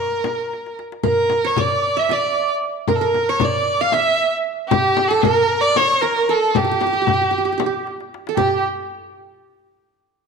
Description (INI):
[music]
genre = Turkish makam ensemble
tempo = 229 BPM (eighths)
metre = 7/8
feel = straight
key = G makam nikriz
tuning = A4 = 437 Hz
[part]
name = rich violin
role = melody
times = 0.0-8.6 s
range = G4 to F5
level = -18 LUFS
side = equal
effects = none
[part]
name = darbuka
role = percussion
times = 0.0-8.6 s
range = none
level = -30 LUFS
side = left 5 dB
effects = none
[part]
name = frame drum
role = percussion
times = 0.2-8.6 s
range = none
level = -24 LUFS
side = left 10 dB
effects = none
[part]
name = qanun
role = second line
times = 1.0-8.6 s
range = G4 to F5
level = -22 LUFS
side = right 8 dB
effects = none
[sound]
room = wet echo chamber reverb, RT60 1.6 s, studio ambience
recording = 1960s-style stereo with parts hard left and right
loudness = -16 LUFS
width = side -5 dB against mid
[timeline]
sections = 0.0-8.4 A section; 8.4-10.2 B section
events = drum fill 0.5-1.0, 7.9-8.4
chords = none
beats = 0.25 0.52 0.78 | 1.04 1.30 1.56 1.82 2.09 2.35 2.61 | 2.87 3.13 3.40 3.66 3.92 4.18 4.45 | 4.71 4.97 5.23 5.49 5.76 6.02 6.28 | 6.54 6.81 7.07 7.33 7.59 7.86 8.12 | 8.38